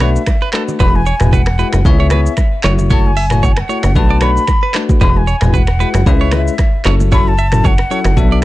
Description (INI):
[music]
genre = afrobeats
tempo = 114 BPM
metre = 4/4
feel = swing 55% on 16ths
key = unclear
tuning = A4 = 445 Hz
[part]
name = mellow silver concert flute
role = melody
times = 0.0-8.4 s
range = E5 to B5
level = -20 LUFS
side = left 1 dB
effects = none
[part]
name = bell-like tine electric piano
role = accompaniment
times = 0.0-8.4 s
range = F#3 to C#5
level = -20 LUFS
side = left 6 dB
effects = none
[part]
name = direct-recorded clean electric guitar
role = riff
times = 0.0-8.4 s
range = A4 to E5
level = -23 LUFS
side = right 7 dB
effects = tape echo
[part]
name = plucky analog bass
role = bass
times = 0.0-8.4 s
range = E1 to C#2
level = -13 LUFS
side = equal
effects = none
[part]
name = afro-pop drum kit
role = drums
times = 0.0-8.4 s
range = finger snaps, handclaps, hi-hat, kick drum, rim click, shaker, toms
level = -14 LUFS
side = equal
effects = vintage 12-bit sampler grit
[part]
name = bongos and congas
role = percussion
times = 0.0-8.3 s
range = none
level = -22 LUFS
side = right 2 dB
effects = none
[sound]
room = little or no reverb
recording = dark, warm production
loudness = -10 LUFS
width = side -17 dB against mid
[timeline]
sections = 0.0-8.4 A section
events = none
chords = 0.0 Bm7; 0.8 Eadd9; 1.9 C#m7; 2.6 F#m7; 4.0 Bm7; 5.0 Eadd9; 6.1 C#m7; 6.9 F#m7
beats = 0.28 | 0.80 1.33 1.85 2.38 | 2.91 3.43 3.96 4.49 | 5.01 5.54 6.06 6.59 | 7.12 7.64 8.17